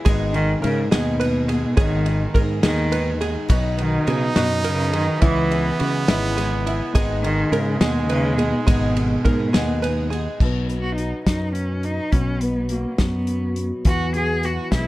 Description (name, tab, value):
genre	indie folk with a building arrangement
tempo	70 BPM (dotted quarters)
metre	6/8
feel	straight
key	unclear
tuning	A4 = 440 Hz
part	dark concert grand piano	accompaniment	0.0-10.4 s	G#1 to G#5	-32 LUFS	equal	none
part	picked twelve-string acoustic guitar	accompaniment	0.0-10.4 s	G#2 to B4	-29 LUFS	left 3 dB	none
part	open-back banjo	arpeggios	0.0-10.4 s	E4 to B4	-28 LUFS	right 4 dB	none
part	fretless electric bass	bass	0.1-14.9 s	G#1 to C#3	-24 LUFS	equal	wide subtle chorus
part	loose indie drum kit	drums	0.1-14.9 s	crash cymbal, hi-hat, kick drum, ride cymbal, snare drum	-23 LUFS	equal	none
part	dark cello	melody	0.3-14.9 s	B2 to G#4	-24 LUFS	equal	tape echo
part	warm trumpet	second line	3.5-10.1 s	G#3 to D#4	-27 LUFS	right 4 dB	tape echo
part	fingerpicked acoustic archtop guitar	accompaniment	10.4-14.9 s	B2 to B4	-29 LUFS	left 2 dB	none
room	light reverb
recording	dark, warm production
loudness	-18 LUFS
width	side -17 dB against mid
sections	0.0-10.4 A section; 10.4-14.9 B section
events	grand piano fill 9.5-10.4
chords	0.1 G#m; 3.5 B; 5.2 C#m7; 6.9 G#m; 10.4 B; 13.9 Eadd9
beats	| 0.06 0.92 | 1.78 2.64 | 3.50 4.37 | 5.23 6.09 | 6.95 7.81 | 8.67 9.54 | 10.40 11.26 | 12.13 12.99 | 13.86 14.72